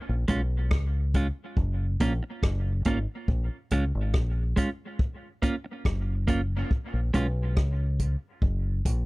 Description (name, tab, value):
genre	dub reggae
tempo	70 BPM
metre	4/4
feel	straight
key	unclear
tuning	A4 = 441 Hz
part	deep dub fingered electric bass	bass	0.1-9.0 s	Gb1 to Db2	-26 LUFS	equal	transformer saturation
part	clean electric guitar	accompaniment	0.3-7.3 s	Ab3 to F4	-30 LUFS	right 2 dB	dub echo
part	vintage drum kit	drums	0.3-9.1 s	hi-hat, kick drum, rim click	-26 LUFS	equal	none
room	little or no reverb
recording	dry, close 1970s-style studio recording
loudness	-25 LUFS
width	side -22 dB against mid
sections	0.0-9.1 A section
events	none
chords	0.0 Bbm7 (rootless); 1.6 Gbmaj7; 3.3 Bbm7; 5.0 Gbmaj7; 6.7 N.C.; 8.4 Gb